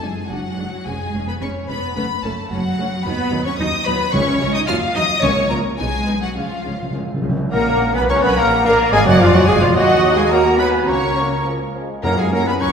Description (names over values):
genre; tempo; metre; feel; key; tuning
quick classical-period movement for symphony orchestra; 108 BPM; 2/4; rubato; F# minor; A4 = 440 Hz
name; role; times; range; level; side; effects
rich studio violin section; melody; 0.0-12.7 s; E#5 to E#6; -24 LUFS; left 4 dB; none
dark studio violin section; second line; 0.0-12.7 s; E#4 to E#5; -24 LUFS; left 2 dB; none
warm studio viola section; accompaniment; 0.0-12.7 s; F#3 to D#5; -25 LUFS; right 2 dB; none
rich studio double bass section; bass; 0.0-12.7 s; E#1 to F#2; -23 LUFS; right 1 dB; none
warm studio cello section; bass; 0.0-12.7 s; E#3 to E#4; -24 LUFS; right 2 dB; none
timpani; percussion; 0.0-0.5, 4.1-7.4, 12.0-12.7 s; F#2 to C#3; -25 LUFS; equal; none
hollow concert flute; second line; 7.5-12.7 s; D5 to A#5; -24 LUFS; left 1 dB; none
mellow oboe; second line; 7.5-12.7 s; E#4 to C#5; -25 LUFS; right 1 dB; none
warm clarinet; second line; 7.5-12.7 s; A#3 to C#5; -25 LUFS; left 1 dB; none
warm bassoon; accompaniment; 7.5-12.7 s; E#3 to C#4; -23 LUFS; equal; none
warm French horn section; sustained chords; 7.5-12.7 s; E#3 to F#4; -22 LUFS; left 2 dB; none
dark trumpet; stabs; 7.5-12.7 s; E#4 to C#5; -23 LUFS; right 2 dB; none
room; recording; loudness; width
wet scoring stage reverb, RT60 1.6 s; heard from further back in the room; -15 LUFS; side -6 dB against mid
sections
0.0-7.5 A section; 7.5-12.7 B section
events
timpani fill 6.4-7.5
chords
0.0 F#sus2; 0.9 C#/E#; 2.0 F#m; 3.1 B/D#; 4.1 C#; 4.7 D#m; 5.2 A#m/C#; 5.8 B; 6.4 C#; 7.5 G#m11/A# (rootless); 8.7 A#7; 9.7 D#m; 10.9 F#/C#; 11.5 C#; 12.0 F#